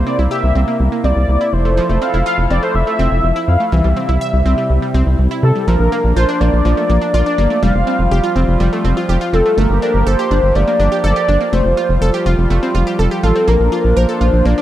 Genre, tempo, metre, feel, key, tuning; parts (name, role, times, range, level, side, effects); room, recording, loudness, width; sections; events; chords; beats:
synth-pop; 123 BPM; 4/4; straight; F major; A4 = 439 Hz
warm velvety synth lead; melody; 0.0-14.6 s; A4 to F5; -17 LUFS; equal; chorus, analog delay
warm analog pad; sustained chords; 0.0-14.6 s; C3 to A4; -21 LUFS; equal; chorus
analog pluck; arpeggios; 0.0-14.6 s; E3 to E5; -21 LUFS; right 1 dB; chorus, analog delay
rubbery square bass; bass; 0.0-14.5 s; F1 to C3; -14 LUFS; equal
moderate lush hall reverb, RT60 2.3 s; dark, warm production; -12 LUFS; side -13 dB against mid
0.0-5.7 A section; 5.7-14.6 B section
0.0 C7; 1.5 Fmaj7; 3.7 C; 5.7 Bb; 7.6 Fsus2; 9.6 Gmadd9; 11.5 Fadd9; 13.5 Bb
0.31 0.80 1.28 | 1.77 2.26 2.75 3.24 | 3.72 4.21 4.70 5.19 | 5.67 6.16 6.65 7.14 | 7.63 8.11 8.60 9.09 | 9.58 10.06 10.55 11.04 | 11.53 12.02 12.50 12.99 | 13.48 13.97 14.46